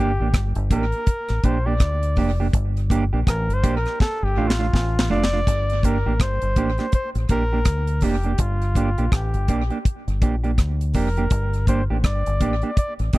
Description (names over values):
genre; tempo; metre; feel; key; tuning
roots reggae; 82 BPM; 4/4; swing 60% on 16ths; G minor; A4 = 440 Hz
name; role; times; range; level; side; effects
warm flugelhorn; melody; 0.0-13.2 s; F4 to D5; -27 LUFS; equal; tape echo
mellow electric guitar; accompaniment; 0.0-13.2 s; A3 to G4; -26 LUFS; right 4 dB; tape echo
deep dub fingered electric bass; bass; 0.0-13.2 s; F1 to D2; -22 LUFS; equal; none
deep reggae drum kit; drums; 0.3-13.2 s; hi-hat, kick drum, rim click, snare drum; -20 LUFS; equal; none
room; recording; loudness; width
little or no reverb; dry, close 1970s-style studio recording; -19 LUFS; side -19 dB against mid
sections
0.0-5.5 A section; 5.5-13.2 B section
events
flugelhorn solo 0.0-5.5; drum fill 4.0-5.5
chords
0.0 Gm; 4.0 Dm; 5.5 Gm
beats
0.34 1.07 1.80 | 2.54 3.27 4.00 4.73 | 5.46 6.19 6.92 7.66 | 8.39 9.12 9.85 10.58 | 11.31 12.04 12.77